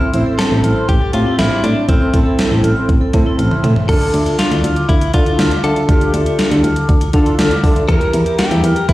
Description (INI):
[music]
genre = synth-pop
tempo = 120 BPM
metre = 4/4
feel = straight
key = D minor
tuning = A4 = 443 Hz
[part]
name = direct-recorded clean electric guitar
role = melody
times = 0.0-8.9 s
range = C4 to Bb4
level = -20 LUFS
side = left 2 dB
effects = tape echo
[part]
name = analog synth brass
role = accompaniment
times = 0.0-8.7 s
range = C4 to C5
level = -20 LUFS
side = right 1 dB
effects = chorus
[part]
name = vibraphone with hard mallets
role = arpeggios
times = 0.0-8.9 s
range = Bb3 to F6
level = -23 LUFS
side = equal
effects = tape echo
[part]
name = solid FM bass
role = bass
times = 0.1-8.9 s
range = A1 to D3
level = -16 LUFS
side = equal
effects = none
[part]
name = gated 80s digital drum machine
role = drums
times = 0.1-8.9 s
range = crash cymbal, hi-hat, kick drum, snare drum, toms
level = -16 LUFS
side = equal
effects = gated reverb, gated reverb snare, overdrive
[sound]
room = light reverb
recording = played on a big sound system in a bare room, large studio reverb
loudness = -12 LUFS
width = side -16 dB against mid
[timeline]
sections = 0.0-3.9 A section; 3.9-8.9 B section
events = drum fill 3.4-3.9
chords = 0.0 Am; 3.9 Dmadd9; 7.9 Edim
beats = 0.39 0.89 1.39 | 1.89 2.39 2.89 3.39 | 3.89 4.39 4.89 5.39 | 5.89 6.39 6.89 7.39 | 7.89 8.39 8.89